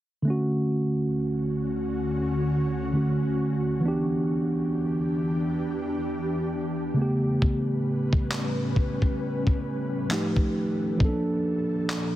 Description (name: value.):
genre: contemporary R&B.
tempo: 67 BPM.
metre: 4/4.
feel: swing 58% on 16ths.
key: D major.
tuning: A4 = 439 Hz.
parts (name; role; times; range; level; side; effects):
mellow tine electric piano; accompaniment; 0.2-12.2 s; C#3 to A4; -26 LUFS; right 1 dB; none.
ethereal airy pad; sustained chords; 1.2-12.2 s; D2 to B4; -30 LUFS; left 1 dB; ensemble chorus, built-in reverb.
dusty soul sampler-style drum kit; drums; 7.4-12.1 s; handclaps, kick drum; -25 LUFS; equal; none.
room: light reverb, digital ambience.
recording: heavily compressed radio sound, multiband compression.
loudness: -24 LUFS.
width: side -14 dB against mid.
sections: 0.3-12.2 A section.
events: none.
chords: 0.3 Dmaj7; 3.8 Em7; 7.0 A9; 10.1 F9; 11.0 Bbmaj7.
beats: | 0.26 1.15 2.05 2.94 | 3.84 4.73 5.63 6.53 | 7.42 8.32 9.21 10.11 | 11.00 11.90.